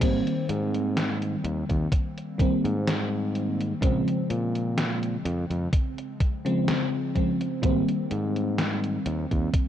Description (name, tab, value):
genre	vaporwave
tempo	63 BPM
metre	4/4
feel	straight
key	Ab major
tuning	A4 = 440 Hz
part	FM electric piano with soft pad layer	accompaniment	0.0-9.7 s	Db3 to C4	-27 LUFS	equal	tremolo, analog chorus, tape echo
part	overdriven fingered electric bass	bass	0.0-9.5 s	Ab1 to Bb2	-28 LUFS	equal	none
part	electronic kick drum	drums	0.0-9.7 s	none	-24 LUFS	equal	none
part	gated 80s digital drum machine	drums	0.0-9.7 s	crash cymbal, hi-hat, snare drum	-32 LUFS	equal	gated reverb, gated reverb snare
room	little or no reverb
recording	cassette tape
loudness	-24 LUFS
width	side -10 dB against mid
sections	0.0-9.7 A section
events	none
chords	0.0 Abmaj9; 3.8 Bbm7; 7.6 Abmaj9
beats	| 0.01 0.97 1.92 2.87 | 3.82 4.78 5.73 6.68 | 7.63 8.59 9.54